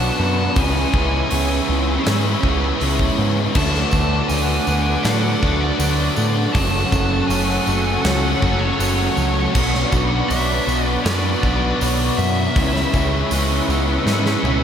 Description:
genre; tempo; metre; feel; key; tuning
rock, shoegaze and dream pop; 80 BPM; 4/4; straight; unclear; A4 = 438 Hz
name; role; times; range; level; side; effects
nasal lead guitar with a parked wah; melody; 0.0-14.6 s; C#5 to A5; -27 LUFS; equal; overdrive, diffuse ambient delay
sweeping resonant pad; sustained chords; 0.0-14.6 s; A4 to D6; -27 LUFS; right 1 dB; chorus
picked twelve-string acoustic guitar; arpeggios; 0.0-14.6 s; F#3 to E4; -31 LUFS; equal; none
biting overdriven guitar; riff; 0.0-14.6 s; F#2 to F#4; -23 LUFS; left 7 dB; analog chorus
crunchy overdriven guitar; riff; 0.0-14.6 s; F#2 to D4; -24 LUFS; right 7 dB; reverse reverb
crunchy overdriven guitar; riff; 0.0-14.6 s; F#2 to D4; -27 LUFS; equal; none
growling picked electric bass; bass; 0.0-14.6 s; F#1 to A2; -21 LUFS; equal; overdrive
huge arena drum kit; drums; 0.6-14.6 s; crash cymbal, hi-hat, kick drum, snare drum, toms; -25 LUFS; equal; none
tambourine; percussion; 3.5-14.5 s; none; -36 LUFS; right 5 dB; none
room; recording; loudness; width
wet lush hall reverb, RT60 3.0 s; dreamy mix soaked in reverb; -16 LUFS; side -8 dB against mid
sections
0.0-14.6 A section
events
drum fill 14.1-14.6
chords
0.0 Bmadd9; 0.6 C#m7; 3.6 D6; 6.6 F#m; 9.6 Bmadd9; 12.6 C#m7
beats
| 0.56 1.31 2.06 2.81 | 3.55 4.30 5.05 5.80 | 6.55 7.30 8.05 8.80 | 9.55 10.30 11.06 11.81 | 12.56 13.31 14.07

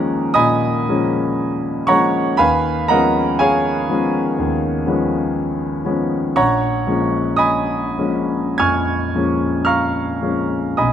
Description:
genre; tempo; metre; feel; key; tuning
classical, impressionist solo piano; 47-63 BPM; 4/4; rubato; Eb minor; A4 = 440 Hz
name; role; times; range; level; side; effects
clear concert grand piano; solo; 0.0-10.9 s; Bb1 to Ab6; -16 LUFS; equal; none
room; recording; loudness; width
light reverb; close, detailed microphones; -16 LUFS; side -9 dB against mid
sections
0.0-10.9 A section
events
none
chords
0.0 Ebm11; 6.3 Bbm7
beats
0.35 1.38 | 2.38 3.38 4.36 5.33 | 6.35 7.37 8.56 9.65 | 10.78

